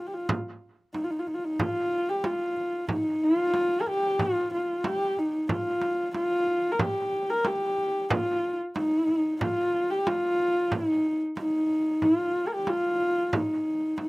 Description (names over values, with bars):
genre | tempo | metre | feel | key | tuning
mongolian traditional, Mongolian folk | 92 BPM | 4/4 | straight | unclear | A4 = 442 Hz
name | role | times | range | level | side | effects
dark horsehead fiddle | melody | 0.0-14.1 s | Eb4 to Bb4 | -25 LUFS | equal | none
frame drum | percussion | 0.3-14.1 s | none | -30 LUFS | right 2 dB | none
room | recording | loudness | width
little or no reverb | recorded outdoors, with no room sound | -24 LUFS | side -22 dB against mid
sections
0.0-14.1 A section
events
none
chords
none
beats
0.30 0.95 | 1.59 2.25 2.90 3.54 | 4.20 4.84 5.50 6.15 | 6.80 7.45 8.10 8.76 | 9.41 10.06 10.71 11.37 | 12.02 12.67 13.33 13.98